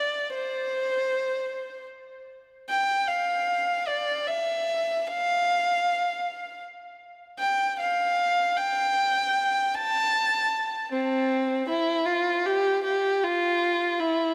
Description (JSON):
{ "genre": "rock", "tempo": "51 BPM (dotted quarters)", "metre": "6/8", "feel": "straight", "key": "unclear", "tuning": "A4 = 442 Hz", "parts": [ { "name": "dark violin", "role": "melody", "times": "0.0-14.3 s", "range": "C4 to A5", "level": "-26 LUFS", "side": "equal", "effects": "analog delay" } ], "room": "moderate huge ambient reverb, RT60 4.3 s", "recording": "none", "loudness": "-26 LUFS", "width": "mono", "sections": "0.0-2.7 A section; 2.7-12.1 B section; 12.1-14.3 A section", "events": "none", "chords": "none" }